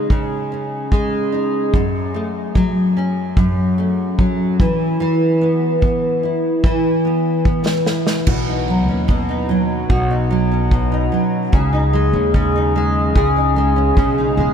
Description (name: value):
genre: acoustic pop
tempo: 74 BPM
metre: 4/4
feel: straight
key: unclear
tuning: A4 = 437 Hz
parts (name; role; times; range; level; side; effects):
- nylon-string guitar; accompaniment; 0.0-14.5 s; F#2 to G#4; -16 LUFS; equal; double-tracked left and right
- unplugged drum kit; drums; 0.1-14.2 s; crash cymbal, kick drum, snare drum; -18 LUFS; equal; none
- upright bass; bass; 8.3-14.5 s; E1 to D#2; -20 LUFS; equal; none
room: moderate huge ambient reverb, RT60 7.8 s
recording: dreamy mix soaked in reverb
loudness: -15 LUFS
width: side -8 dB against mid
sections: 0.0-8.3 A section; 8.3-14.5 B section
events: drum fill 6.6-8.3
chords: 0.0 C#sus2; 1.7 F#m; 4.6 E5; 8.3 Badd9; 11.5 C#sus2